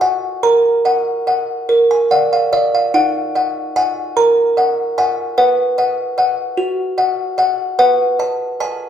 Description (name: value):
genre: classical, lullaby for music box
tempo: 49 BPM (dotted quarters)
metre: 6/8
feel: straight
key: Eb minor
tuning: A4 = 440 Hz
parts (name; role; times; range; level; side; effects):
- music box; solo; 0.0-8.9 s; Eb4 to Bb5; -13 LUFS; equal; none
room: wet large studio reverb, RT60 1.2 s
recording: band playing live in one room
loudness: -13 LUFS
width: side -9 dB against mid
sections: 0.0-8.9 A section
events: none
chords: 0.4 Ebm/Bb; 1.7 Bb; 2.9 Ebm; 5.4 B; 7.8 B7